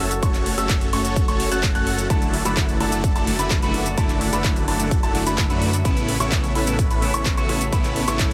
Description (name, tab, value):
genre	EDM, festival progressive house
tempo	128 BPM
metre	4/4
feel	straight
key	unclear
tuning	A4 = 440 Hz
part	lush unison pad	sustained chords	0.0-8.3 s	F#4 to B5	-34 LUFS	equal	chorus, sidechain pumping
part	clear grand piano	arpeggios	0.0-8.3 s	A5 to F#6	-31 LUFS	equal	vintage 12-bit sampler grit, sidechain pumping, digital delay
part	big supersaw lead	riff	0.0-8.3 s	A3 to F#5	-28 LUFS	equal	phaser, vintage 12-bit sampler grit, sidechain pumping, digital delay
part	detuned saw bass	bass	0.0-8.3 s	F#1 to F#2	-29 LUFS	equal	sidechain pumping
part	pop drum kit	drums	0.1-8.3 s	cabasa, handclaps, hi-hat, rim click	-30 LUFS	equal	overdrive
part	electronic kick drum	drums	0.2-8.3 s	none	-24 LUFS	equal	none
part	clean electric guitar	accompaniment	2.1-8.3 s	C#3 to F#4	-30 LUFS	equal	subtle chorus, sidechain pumping, digital delay
room	little or no reverb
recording	none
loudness	-21 LUFS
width	mono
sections	0.0-8.3 A section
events	none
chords	0.0 F#m; 2.1 Dadd9/F#; 5.9 Aadd9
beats	| 0.23 0.69 1.16 1.63 | 2.10 2.57 3.04 3.51 | 3.98 4.45 4.91 5.38 | 5.85 6.32 6.79 7.26 | 7.73 8.20